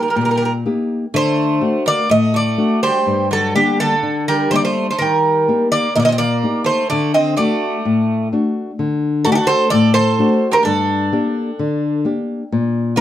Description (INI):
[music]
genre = greek folk, Greek bouzouki band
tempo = 126 BPM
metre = 4/4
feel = straight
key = D phrygian dominant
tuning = A4 = 445 Hz
[part]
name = Greek bouzouki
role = melody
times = 0.0-13.0 s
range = G4 to Eb5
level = -17 LUFS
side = right 1 dB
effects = none
[part]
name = Greek bouzouki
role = second line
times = 0.0-13.0 s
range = D3 to A4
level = -23 LUFS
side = right 6 dB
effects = none
[part]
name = nylon-string guitar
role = accompaniment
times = 0.0-13.0 s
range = G2 to G4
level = -17 LUFS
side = left 2 dB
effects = none
[sound]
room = moderate studio reverb, RT60 0.6 s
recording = dark, warm production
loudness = -14 LUFS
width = side -12 dB against mid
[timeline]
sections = 0.0-8.8 A section; 8.8-13.0 B section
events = speeding up 0.0-13.0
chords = 0.0 Eb; 1.1 D; 3.1 Gm; 5.0 Eb; 6.9 D; 10.7 Gm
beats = 0.15 0.64 | 1.13 1.61 2.10 2.59 | 3.07 3.55 4.03 4.51 | 4.99 5.47 5.95 6.43 | 6.90 7.38 7.85 8.32 | 8.79 9.26 9.73 10.19 | 10.66 11.12 11.59 12.05 | 12.51 12.97